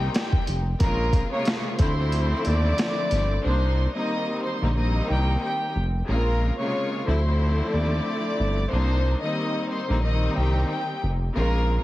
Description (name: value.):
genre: hip hop, boom-bap hip-hop.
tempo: 91 BPM.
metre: 4/4.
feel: swing 56% on 16ths.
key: C dorian.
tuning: A4 = 439 Hz.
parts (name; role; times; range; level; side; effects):
warm studio violin section; melody; 0.0-11.8 s; G4 to Eb6; -29 LUFS; equal; high-pass filter, low-pass filter, tape echo.
clear studio string section; accompaniment; 0.0-11.8 s; C3 to F4; -28 LUFS; left 1 dB; high-pass filter, low-pass filter.
smooth gliding synth bass; bass; 0.0-11.8 s; F1 to Eb2; -23 LUFS; equal; none.
boom bap sampler-style drum kit; drums; 0.1-3.3 s; hi-hat, kick drum, snare drum; -25 LUFS; equal; none.
room: small room ambience.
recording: heavily compressed radio sound, vinyl crackle.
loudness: -22 LUFS.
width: side -16 dB against mid.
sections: 0.0-3.4 A section; 3.4-11.8 B section.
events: kick muted 2.1-3.4.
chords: 0.0 Cm7; 0.8 Bbm7; 1.8 Dm7; 3.4 Cm7; 6.1 Bbm7; 7.1 Dm7; 8.7 Cm7.